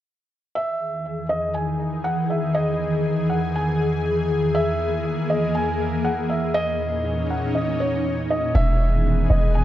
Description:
hip hop; 120 BPM; 4/4; half-time; E lydian; A4 = 441 Hz
felt-muted upright piano; melody; 0.6-9.6 s; C#5 to G#5; -26 LUFS; right 1 dB; tape echo
ethereal airy pad; sustained chords; 1.0-9.6 s; E2 to G#4; -22 LUFS; left 1 dB; ensemble chorus, built-in reverb
warm 808-style bass; bass; 8.6-9.6 s; E1; -18 LUFS; equal
light reverb, small room ambience; worn, warbling old tape, cassette tape, warbly pitch drift; -20 LUFS; side -13 dB against mid
0.6-8.6 A section; 8.6-9.6 B section
0.6 Emaj7; 4.5 E(#11); 6.5 C#m69/E; 8.6 Emaj7

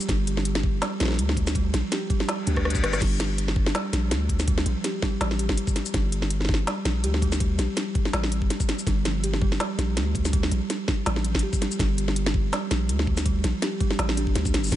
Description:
half-time drum and bass; 164 BPM; 4/4; swing 55% on 16ths, half-time; G minor; A4 = 440 Hz
buzzing kalimba; arpeggios; 0.0-14.3 s; F3 to G4; -30 LUFS; right 2 dB; vintage 12-bit sampler grit, ping-pong delay
organic electronic drum kit; drums; 0.0-14.8 s; crash cymbal, hi-hat, rim click, shaker, snare drum; -28 LUFS; equal; overdrive, studio ambience
long sustained 808-style bass; bass; 0.1-14.8 s; G1 to D2; -26 LUFS; equal; tube saturation
electronic kick drum; drums; 0.1-14.8 s; -25 LUFS; equal; studio ambience
reverse cymbal; sound effects; 2.4-3.0 s; -36 LUFS; left 6 dB
little or no reverb; nothing above 10.8 kHz; -22 LUFS; side -13 dB against mid
0.0-14.7 A section
drop 0.0-14.7; drum fill 2.3-3.0; reverse cymbal 2.4-3.0; band accent 14.5
0.0 G5

